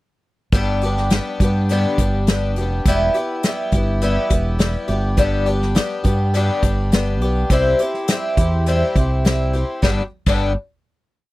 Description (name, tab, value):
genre	folk rock and heartland rock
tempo	103 BPM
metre	4/4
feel	straight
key	G major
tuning	A4 = 440 Hz
part	picked twelve-string acoustic guitar	accompaniment	0.5-10.5 s	G2 to G4	-21 LUFS	left 2 dB	none
part	fingered electric bass	bass	0.5-10.5 s	E1 to G2	-19 LUFS	equal	none
part	unplugged drum kit	drums	0.5-10.4 s	crash cymbal, hi-hat, kick drum, snare drum	-18 LUFS	equal	none
room	little or no reverb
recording	dry, close 1970s-style studio recording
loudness	-16 LUFS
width	side -18 dB against mid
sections	0.5-9.8 verse; 9.8-11.3 final chord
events	none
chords	0.5 G; 2.9 Em; 4.9 G; 7.5 C; 9.8 G